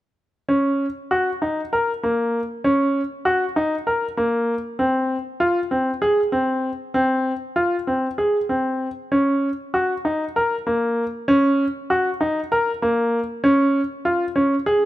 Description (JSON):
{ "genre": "contemporary instrumental, contemporary", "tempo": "195 BPM (eighths)", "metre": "7/8", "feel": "straight", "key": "unclear", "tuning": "A4 = 439 Hz", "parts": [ { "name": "bright baby grand piano", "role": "arpeggios", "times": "0.5-14.8 s", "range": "Bb3 to Bb4", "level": "-19 LUFS", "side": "equal", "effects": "none" } ], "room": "light reverb", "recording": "close, detailed microphones", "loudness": "-19 LUFS", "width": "side -15 dB against mid", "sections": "0.5-14.9 A section", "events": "none", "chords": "none", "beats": "| 0.48 0.79 1.10 1.41 1.72 2.02 2.33 | 2.64 2.94 3.25 3.56 3.87 4.17 4.48 | 4.79 5.09 5.40 5.71 6.02 6.32 6.63 | 6.94 7.25 7.56 7.87 8.18 8.50 8.81 | 9.12 9.43 9.74 10.05 10.36 10.67 10.98 | 11.28 11.59 11.90 12.21 12.52 12.82 13.13 | 13.44 13.74 14.05 14.36 14.66" }